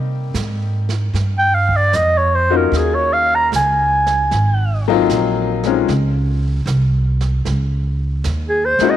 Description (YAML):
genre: jazz ballad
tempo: 76 BPM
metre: 4/4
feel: swing 68% on 8ths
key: unclear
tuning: A4 = 439 Hz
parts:
  - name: clear upright piano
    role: accompaniment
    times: 0.0-9.0 s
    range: Gb3 to G4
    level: -19 LUFS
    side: left 10 dB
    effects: none
  - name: upright bass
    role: bass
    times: 0.0-8.8 s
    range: Ab1 to C3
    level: -18 LUFS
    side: right 1 dB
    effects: none
  - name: jazz brush drum kit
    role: drums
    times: 0.3-9.0 s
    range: brushed snare drum, hi-hat, kick drum, snare drum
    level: -30 LUFS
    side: right 7 dB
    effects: none
  - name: growling clarinet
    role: melody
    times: 1.4-9.0 s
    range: Ab4 to Bb5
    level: -15 LUFS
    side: right 1 dB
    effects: none
room: light reverb, small room ambience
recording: 1960s-style stereo with parts hard left and right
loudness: -14 LUFS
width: side -11 dB against mid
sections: 0.0-9.0 A section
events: clarinet solo 0.0-9.0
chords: 0.0 Cm7; 2.7 Ebm9; 4.3 Ab13; 5.9 Dbsus2